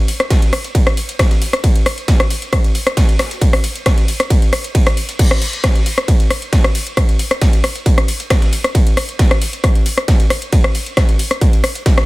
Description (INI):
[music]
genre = techno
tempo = 135 BPM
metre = 4/4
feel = straight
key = none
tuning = none
[part]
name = breakbeat sampler-style drum kit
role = drums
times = 0.1-12.1 s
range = hi-hat, snare drum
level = -28 LUFS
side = equal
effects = overdrive, sidechain pumping on hats, high-pass filter on hats, high-pass filter on snare, high-pass filter on room
[part]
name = techno drum kit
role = drums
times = 0.1-12.1 s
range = crash cymbal, hi-hat, ride cymbal, rim click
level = -18 LUFS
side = left 1 dB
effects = sidechain pumping on hats, sidechain pumping on cymbals
[part]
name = electronic kick drum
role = drums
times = 0.3-12.0 s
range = none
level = -12 LUFS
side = equal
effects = distortion
[sound]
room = digital ambience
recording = none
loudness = -12 LUFS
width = side -21 dB against mid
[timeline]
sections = 0.0-12.1 A section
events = none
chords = none